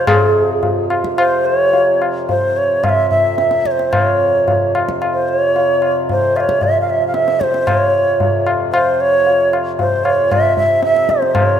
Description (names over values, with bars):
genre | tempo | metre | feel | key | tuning
indian classical, Hindustani | 112 BPM | 7/4 | straight | F raga todi | A4 = 441 Hz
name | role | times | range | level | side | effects
reedy bansuri | melody | 0.0-11.6 s | Ab4 to F5 | -14 LUFS | right 1 dB | slapback echo
hand-pumped harmonium | drone | 0.0-11.6 s | F2 to C3 | -23 LUFS | right 1 dB | stereo widening
tabla | percussion | 0.1-11.5 s | none | -18 LUFS | left 2 dB | none
room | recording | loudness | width
wet lush hall reverb, RT60 2.3 s | rough home demo mix | -12 LUFS | side -9 dB against mid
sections
0.1-11.6 A section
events
speeding up 0.0-11.6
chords
none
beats
| 0.07 0.63 1.18 1.73 2.28 2.83 3.38 | 3.92 4.46 5.00 5.54 6.08 6.62 7.15 | 7.68 8.21 8.74 9.27 9.79 10.31 10.84 | 11.36